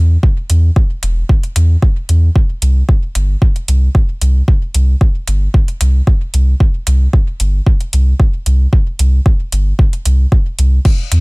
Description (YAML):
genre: dub techno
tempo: 113 BPM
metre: 4/4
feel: swing 53% on 16ths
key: unclear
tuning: A4 = 438 Hz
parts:
  - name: soft dub sub bass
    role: bass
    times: 0.0-11.2 s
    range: E1 to E2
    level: -10 LUFS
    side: equal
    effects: sidechain pumping
  - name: electronic kick drum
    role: drums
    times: 0.2-11.0 s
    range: none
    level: -11 LUFS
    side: equal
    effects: none
  - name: deep house drum kit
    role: drums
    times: 0.5-11.2 s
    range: crash cymbal, hi-hat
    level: -23 LUFS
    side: right 1 dB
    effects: none
room: digital ambience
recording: none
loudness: -10 LUFS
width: side -30 dB against mid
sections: 0.0-10.9 A section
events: none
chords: none